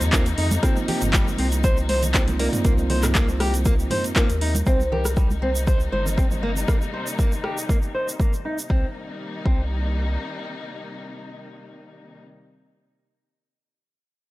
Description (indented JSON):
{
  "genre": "afro house",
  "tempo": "119 BPM",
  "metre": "4/4",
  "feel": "swing 54% on 16ths",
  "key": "C minor",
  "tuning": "A4 = 440 Hz",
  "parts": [
    { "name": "buzzing marimba with medium mallets", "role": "melody", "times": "0.0-0.3, 4.2-8.2 s", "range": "Bb4 to F5", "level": "-29 LUFS", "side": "equal", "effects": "tape echo" },
    { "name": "warm symphonic string section", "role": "sustained chords", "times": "0.0-12.2 s", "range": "C3 to Eb4", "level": "-33 LUFS", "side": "left 2 dB", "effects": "sidechain pumping, low-pass filter" },
    { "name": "bell-like tine electric piano", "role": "stabs", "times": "0.0-4.3 s", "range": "Bb3 to D5", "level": "-29 LUFS", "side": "right 3 dB", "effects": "sidechain pumping, tape echo" },
    { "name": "round analog bass", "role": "bass", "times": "0.0-10.2 s", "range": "G1 to F2", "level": "-24 LUFS", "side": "equal", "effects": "sidechain pumping" },
    { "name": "deep house drum kit", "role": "drums", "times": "0.0-7.5 s", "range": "handclaps, hi-hat, rim click, toms", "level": "-26 LUFS", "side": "equal", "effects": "overdrive" },
    { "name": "egg shaker", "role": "percussion", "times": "0.0-8.7 s", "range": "none", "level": "-33 LUFS", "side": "right 3 dB", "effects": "none" },
    { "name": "flamenco guitar", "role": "arpeggios", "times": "0.1-9.6 s", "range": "G3 to C5", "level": "-28 LUFS", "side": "equal", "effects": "sidechain pumping, low-pass filter, tape echo" },
    { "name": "electronic kick drum", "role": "drums", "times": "0.1-9.6 s", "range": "none", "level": "-20 LUFS", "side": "equal", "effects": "overdrive" },
    { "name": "congas", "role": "percussion", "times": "0.1-6.7 s", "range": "none", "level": "-31 LUFS", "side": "right 2 dB", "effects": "none" }
  ],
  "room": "small room reverb",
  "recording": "dry, gritty hardware recording",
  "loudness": "-19 LUFS",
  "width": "side -18 dB against mid",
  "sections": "0.0-4.7 A section; 4.7-8.7 B section; 8.7-12.7 C section",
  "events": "drop 0.0-4.7; filter sweep on string section 4.7-8.7",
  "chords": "0.0 Cm7"
}